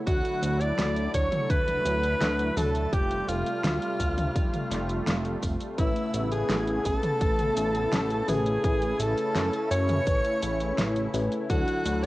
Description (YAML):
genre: synthwave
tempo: 84 BPM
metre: 4/4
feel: straight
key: A major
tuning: A4 = 440 Hz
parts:
  - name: warm analog pad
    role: sustained chords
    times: 0.0-12.1 s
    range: C3 to F4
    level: -33 LUFS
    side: equal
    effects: chorus, sidechain pumping, cassette tape
  - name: bright alto saxophone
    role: melody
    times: 0.1-12.1 s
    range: E4 to D5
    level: -29 LUFS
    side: equal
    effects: cassette tape, analog delay
  - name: airy dreamy lead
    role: second line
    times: 0.1-12.1 s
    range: E5 to D6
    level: -38 LUFS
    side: equal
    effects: chorus, cassette tape, tape echo
  - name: chorused synth bass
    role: bass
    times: 0.1-12.1 s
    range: F1 to F#2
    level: -30 LUFS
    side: equal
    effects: tube saturation
  - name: electronic kick drum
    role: drums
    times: 0.1-11.6 s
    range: none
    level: -28 LUFS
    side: equal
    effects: cassette tape
  - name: pop drum kit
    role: drums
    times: 0.1-12.1 s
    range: hi-hat, shaker, snare drum, toms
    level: -32 LUFS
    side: equal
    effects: cassette tape
  - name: FM electric piano with soft pad layer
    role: stabs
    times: 5.8-12.1 s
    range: F#3 to B4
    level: -33 LUFS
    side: left 2 dB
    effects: chorus, phaser, cassette tape
room: moderate spring reverb, RT60 1.6 s, digital ambience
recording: home recording on cassette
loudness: -24 LUFS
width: side -17 dB against mid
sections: 0.0-12.1 A section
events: none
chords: 0.1 Dadd9; 2.9 Fadd9; 5.8 Aadd9; 11.5 Dadd9